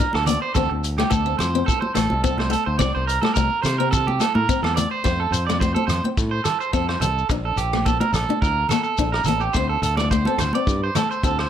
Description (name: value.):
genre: highlife guitar band.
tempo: 107 BPM.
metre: 4/4.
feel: swing 54% on 16ths.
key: F major.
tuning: A4 = 440 Hz.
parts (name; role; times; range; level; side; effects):
picked acoustic archtop guitar; accompaniment; 0.0-11.5 s; A3 to D4; -26 LUFS; left 9 dB; none.
electric guitar at the edge of break-up; arpeggios; 0.0-11.5 s; G4 to D5; -23 LUFS; right 5 dB; slapback echo, plate reverb.
vintage drum kit; drums; 0.0-11.5 s; hi-hat, kick drum, rim click; -26 LUFS; equal; none.
shekere; percussion; 0.0-11.4 s; none; -29 LUFS; left 5 dB; none.
modern bright fingered electric bass; bass; 0.1-11.4 s; A1 to C3; -25 LUFS; equal; none.
congas; percussion; 0.1-11.1 s; none; -27 LUFS; right 2 dB; none.
room: light reverb.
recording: none.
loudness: -18 LUFS.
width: side -9 dB against mid.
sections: 0.0-5.0 A section; 5.0-11.5 B section.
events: none.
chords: 0.0 Bbmaj7; 0.6 D7(no3); 2.8 N.C.; 5.0 F; 7.3 Bbmaj7; 9.5 D5.